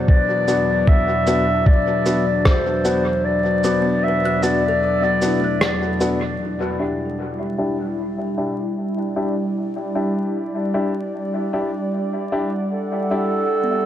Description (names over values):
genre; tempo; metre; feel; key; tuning
ambient dub; 76 BPM; 4/4; swing 54% on 16ths; E minor; A4 = 440 Hz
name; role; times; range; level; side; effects
warbly tape-like pad; sustained chords; 0.0-13.9 s; E2 to F#5; -23 LUFS; equal; chorus, built-in reverb
dark clarinet; melody; 0.1-6.0, 12.7-13.9 s; A4 to E5; -21 LUFS; left 1 dB; dub echo
electronic kick drum; drums; 0.1-2.6 s; none; -13 LUFS; equal; none
clear upright piano; stabs; 0.5-13.9 s; B3 to G4; -24 LUFS; left 2 dB; low-pass filter, dub echo
electronic cabasa and rim click; drums; 0.5-6.2 s; none; -27 LUFS; right 1 dB; dub echo
kalimba; arpeggios; 3.6-8.1, 13.6-13.9 s; A3 to F#6; -30 LUFS; right 2 dB; tape echo
room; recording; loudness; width
moderate echo chamber reverb, RT60 1.9 s, small room reverb; vinyl crackle; -18 LUFS; side -11 dB against mid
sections
0.0-6.4 A section; 6.4-13.9 B section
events
kick drops out 3.2-6.4; filter sweep on upright piano 6.4-13.9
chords
0.0 Bm/E; 6.4 Em7